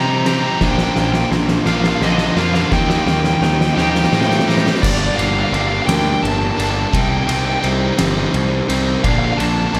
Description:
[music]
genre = post-rock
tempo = 57 BPM (dotted quarters)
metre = 6/8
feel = straight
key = G minor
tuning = A4 = 440 Hz
[part]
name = dark smooth lead guitar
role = melody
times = 0.0-9.8 s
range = D5 to Bb5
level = -24 LUFS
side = equal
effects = overdrive, tape echo
[part]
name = rich studio string section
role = sustained chords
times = 0.0-9.8 s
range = D3 to Bb5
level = -34 LUFS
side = equal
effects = none
[part]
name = twangy electric guitar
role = arpeggios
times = 0.0-4.8 s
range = Bb2 to G4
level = -29 LUFS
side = equal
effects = tape echo
[part]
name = vibraphone with soft mallets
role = arpeggios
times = 0.0-9.7 s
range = Bb4 to D5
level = -33 LUFS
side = equal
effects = tape echo
[part]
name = crunchy overdriven guitar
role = riff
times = 0.0-9.8 s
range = G2 to Eb4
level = -23 LUFS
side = equal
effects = none
[part]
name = distorted electric guitar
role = riff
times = 0.0-4.8 s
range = Bb2 to Eb4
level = -27 LUFS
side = equal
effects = overdrive
[part]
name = fuzz picked electric bass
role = bass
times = 0.0-9.8 s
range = G1 to C3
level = -23 LUFS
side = equal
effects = overdrive
[part]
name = oversized low-tuned drum kit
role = drums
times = 0.3-9.8 s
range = crash cymbal, kick drum, ride cymbal, snare drum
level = -22 LUFS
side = equal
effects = none
[sound]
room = light reverb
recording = none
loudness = -16 LUFS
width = mono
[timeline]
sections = 0.0-4.8 A section; 4.8-9.8 B section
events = build-up 0.0-4.8; drum fill 0.0-4.8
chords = 0.0 Cm7; 0.6 Bbadd9; 2.7 Ebadd9; 4.8 Gm; 6.9 Cm7; 9.0 Bbadd9

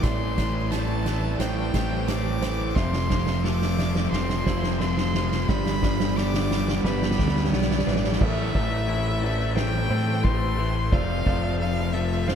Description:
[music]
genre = post-rock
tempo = 88 BPM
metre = 4/4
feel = straight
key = A minor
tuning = A4 = 439 Hz
[part]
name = clear violin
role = melody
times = 0.0-12.3 s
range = D5 to D6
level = -31 LUFS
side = left 1 dB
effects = diffuse ambient delay
[part]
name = muted studio string section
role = sustained chords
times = 0.0-12.3 s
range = E3 to E5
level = -38 LUFS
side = equal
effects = none
[part]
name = felt-muted upright piano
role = arpeggios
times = 0.0-12.3 s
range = B4 to E5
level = -39 LUFS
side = right 5 dB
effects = diffuse ambient delay
[part]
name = twelve-string electric guitar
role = arpeggios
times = 0.0-12.3 s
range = G2 to G4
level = -35 LUFS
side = equal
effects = diffuse ambient delay
[part]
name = fuzz guitar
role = riff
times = 0.0-12.3 s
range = F2 to A3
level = -30 LUFS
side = left 10 dB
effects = distortion
[part]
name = sludgy distorted guitar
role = riff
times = 0.0-8.2 s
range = F2 to A3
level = -31 LUFS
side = right 13 dB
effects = overdrive
[part]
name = growling fingered electric bass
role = bass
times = 0.0-12.3 s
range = F1 to A2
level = -27 LUFS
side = equal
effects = overdrive
[part]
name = soft-mallet drum kit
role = drums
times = 0.0-12.3 s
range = crash cymbal, hi-hat, kick drum, snare drum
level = -27 LUFS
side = right 1 dB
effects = none
[sound]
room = light reverb, small room ambience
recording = none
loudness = -22 LUFS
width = side -8 dB against mid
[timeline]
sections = 0.0-8.2 A section; 8.2-12.3 B section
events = build-up 0.0-8.2; drum fill 0.0-8.2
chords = 0.0 Am7; 2.8 Fmaj7; 5.5 G7; 8.2 Am; 10.9 Fmaj7

